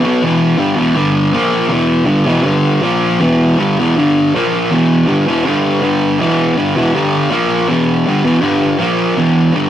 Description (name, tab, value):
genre	rock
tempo	161 BPM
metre	4/4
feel	straight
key	E minor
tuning	A4 = 439 Hz
part	fuzz guitar	solo	0.0-9.7 s	E2 to B3	-11 LUFS	equal	distortion
room	moderate studio reverb, RT60 0.6 s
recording	rough rehearsal-room recording, warm saturation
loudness	-11 LUFS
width	side -11 dB against mid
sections	0.2-9.7 A section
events	none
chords	0.2 Em; 1.0 G5; 1.3 A#5; 1.7 Em; 2.5 G5; 2.8 A#5; 3.2 Em; 4.0 G5; 4.3 A#5; 4.7 Em; 5.4 G5; 6.2 Em; 6.9 G5; 7.3 A#5; 7.7 Em; 8.4 G5; 8.8 A#5; 9.2 Em